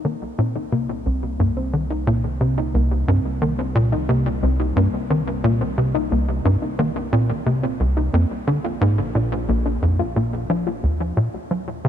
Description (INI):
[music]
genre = ambient, sequencer-driven space music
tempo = 89 BPM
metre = 4/4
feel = straight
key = C minor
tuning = A4 = 440 Hz
[part]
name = tight sequencer bass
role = riff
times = 0.0-11.9 s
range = Bb1 to Gb3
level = -20 LUFS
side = equal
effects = lush chorus, tape echo
[part]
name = analog drone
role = bass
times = 0.8-11.9 s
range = Bb1 to Eb2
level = -30 LUFS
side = equal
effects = chorus
[part]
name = soft round pluck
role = arpeggios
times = 0.1-11.9 s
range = Bb3 to Gb4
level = -26 LUFS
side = moving between left 8 dB and right 3 dB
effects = chorus, auto-pan, tape echo
[sound]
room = light reverb, digital ambience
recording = none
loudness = -19 LUFS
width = side -10 dB against mid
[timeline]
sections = 0.0-10.8 A section; 10.8-11.9 B section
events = filter sweep on analog synth bass 0.0-10.8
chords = 0.0 Cm7; 8.1 Bb; 10.8 Ebm7